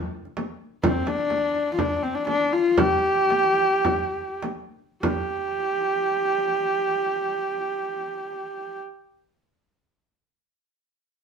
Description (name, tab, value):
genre	mongolian traditional, Mongolian folk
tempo	96-127 BPM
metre	4/4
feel	straight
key	unclear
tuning	A4 = 439 Hz
part	frame drum	percussion	0.3-5.3 s	none	-26 LUFS	right 1 dB	none
part	rich horsehead fiddle	melody	0.8-8.8 s	C4 to G4	-22 LUFS	equal	none
room	wet studio reverb, RT60 0.8 s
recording	band playing live in one room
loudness	-22 LUFS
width	side -6 dB against mid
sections	0.0-5.0 A section; 5.0-10.1 B section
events	slowing down 0.8-5.0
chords	none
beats	0.36 | 0.83 1.30 1.78 2.28 | 2.78 3.30 3.85 4.42 | 5.03 5.66 6.29 6.92 | 7.54 8.17